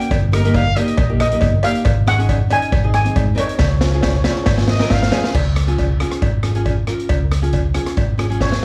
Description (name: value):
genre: calypso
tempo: 138 BPM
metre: 4/4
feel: swing 53% on 16ths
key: Db major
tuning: A4 = 441 Hz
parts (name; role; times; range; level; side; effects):
- steel pan; melody; 0.0-4.6, 8.4-8.6 s; Db5 to Ab5; -24 LUFS; equal; none
- nylon-string guitar; accompaniment; 0.0-8.6 s; Bb3 to Db5; -26 LUFS; equal; none
- street-band drum kit; drums; 0.0-8.6 s; crash cymbal, hi-hat, kick drum, rim click, snare drum; -22 LUFS; equal; none
- vintage muted fingered electric bass; bass; 0.1-8.6 s; G1 to Ab2; -20 LUFS; equal; none
- cowbell; percussion; 0.1-8.5 s; none; -29 LUFS; equal; none
- warm horn section; second line; 0.3-1.1, 4.7-5.3 s; Bb4 to F5; -26 LUFS; equal; none
room: light reverb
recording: small room ambience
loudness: -17 LUFS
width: mono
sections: 0.0-5.3 A section; 5.3-8.6 B section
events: drum fill 3.6-5.3, 8.4; nylon-string guitar fill 8.0-8.6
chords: 0.1 Eb/G; 1.9 Ab7sus4; 2.7 Ab; 3.6 Db